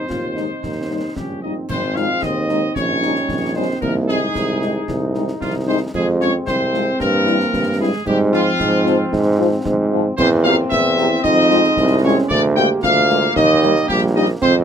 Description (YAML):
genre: military-style march for wind band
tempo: 113 BPM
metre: 2/4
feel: straight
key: Ab major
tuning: A4 = 440 Hz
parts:
  - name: bright trumpet section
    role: melody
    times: 0.0-14.5 s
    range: F4 to G5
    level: -20 LUFS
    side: left 2 dB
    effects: none
  - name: mellow euphonium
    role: second line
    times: 0.0-14.5 s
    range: F3 to G4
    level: -23 LUFS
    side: right 4 dB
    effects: none
  - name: warm trombone section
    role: sustained chords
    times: 0.0-14.6 s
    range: E3 to F4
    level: -25 LUFS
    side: left 2 dB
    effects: none
  - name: clear tuba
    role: bass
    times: 0.1-14.6 s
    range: Ab1 to Ab2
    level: -19 LUFS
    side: right 2 dB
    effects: none
  - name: concert snare drum, concert bass drum and clash cymbals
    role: drums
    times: 0.1-14.6 s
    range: none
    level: -29 LUFS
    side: left 1 dB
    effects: none
  - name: dark French horn section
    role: accompaniment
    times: 0.4-14.2 s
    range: F3 to G4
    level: -21 LUFS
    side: left 4 dB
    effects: none
room: light reverb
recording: close, detailed microphones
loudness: -15 LUFS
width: side -8 dB against mid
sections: 0.0-1.7 A section; 1.7-14.6 B section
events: none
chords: 0.0 Ab/Eb; 0.6 Eb; 1.7 Ab; 2.8 Eb7/Bb; 3.8 Ab/C; 5.9 Fm; 7.0 C7/G; 8.1 Fm/Ab; 10.2 C7/E; 11.2 Fm; 12.3 Bb7/D; 13.4 Eb